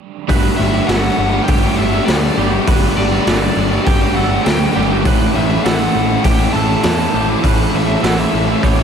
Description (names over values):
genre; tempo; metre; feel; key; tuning
rock, shoegaze and dream pop; 101 BPM; 4/4; straight; unclear; A4 = 440 Hz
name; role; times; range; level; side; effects
clean electric guitar; arpeggios; 0.3-8.8 s; G4 to B4; -26 LUFS; right 7 dB; ensemble chorus, ping-pong delay
overdriven semi-hollow guitar; riff; 0.3-8.8 s; A2 to A4; -19 LUFS; left 8 dB; analog chorus
overdriven semi-hollow guitar; riff; 0.3-8.8 s; A2 to G4; -19 LUFS; right 8 dB; reverse reverb
fuzz picked electric bass; bass; 0.3-8.8 s; G1 to E2; -19 LUFS; equal; overdrive
raw garage drum kit; drums; 0.3-8.8 s; hi-hat, kick drum, snare drum; -18 LUFS; equal; none
biting lead guitar; melody; 0.6-8.8 s; C#5 to A5; -22 LUFS; left 1 dB; overdrive, ping-pong delay
room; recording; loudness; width
wet huge ambient reverb, RT60 8.1 s; dreamy mix soaked in reverb; -12 LUFS; side -7 dB against mid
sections
0.3-8.8 A section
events
none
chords
0.3 Gsus2; 5.1 A